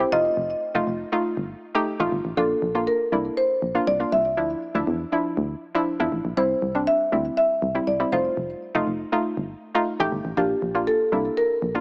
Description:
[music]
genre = dance-pop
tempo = 120 BPM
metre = 4/4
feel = straight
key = unclear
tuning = A4 = 440 Hz
[part]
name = marimba with soft mallets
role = melody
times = 0.0-11.8 s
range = G4 to E5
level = -25 LUFS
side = equal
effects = digital delay
[part]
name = soft round pluck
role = accompaniment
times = 0.0-11.8 s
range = F3 to G4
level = -27 LUFS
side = equal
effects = chorus
[part]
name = solid FM bass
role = bass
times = 0.0-11.8 s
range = F1 to E2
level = -32 LUFS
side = equal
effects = none
[sound]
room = light reverb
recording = small speaker sound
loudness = -24 LUFS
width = mono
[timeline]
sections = 0.0-11.8 A section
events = none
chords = 0.1 F7; 2.4 Bb; 4.4 Dmadd9; 6.4 C; 8.1 F7; 10.4 Bb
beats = | 0.37 0.87 1.37 1.87 | 2.37 2.87 3.37 3.87 | 4.37 4.87 5.37 5.87 | 6.37 6.87 7.37 7.87 | 8.37 8.87 9.37 9.87 | 10.37 10.87 11.37

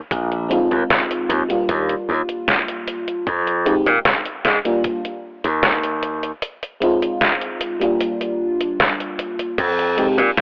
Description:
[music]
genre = vaporwave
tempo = 76 BPM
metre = 4/4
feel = straight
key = unclear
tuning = A4 = 440 Hz
[part]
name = slap bass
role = bass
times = 0.1-10.3 s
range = Bb1 to Bb2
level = -18 LUFS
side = equal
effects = tube saturation
[part]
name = detuned 8-bit digital drum machine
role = drums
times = 0.1-10.4 s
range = crash cymbal, hi-hat, snare drum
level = -19 LUFS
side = equal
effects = studio ambience
[part]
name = electronic kick drum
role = drums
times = 0.1-9.7 s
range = none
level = -29 LUFS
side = equal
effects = studio ambience
[part]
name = FM electric piano with soft pad layer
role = accompaniment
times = 0.5-10.2 s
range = G3 to G4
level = -20 LUFS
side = equal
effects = lush chorus, cassette tape, tape echo
[sound]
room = moderate spring reverb, RT60 2.2 s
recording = home recording on cassette, telephone sound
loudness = -17 LUFS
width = side -36 dB against mid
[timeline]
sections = 0.0-9.6 A section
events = none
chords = 0.1 Bb9sus4; 1.7 Ebmaj7; 3.3 Fm9; 4.8 N.C.; 6.4 Bb9sus4; 8.0 Gm7; 9.6 Fm9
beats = | 0.11 0.90 1.69 2.48 | 3.27 4.06 4.85 5.64 | 6.42 7.21 8.00 8.79 | 9.58 10.37

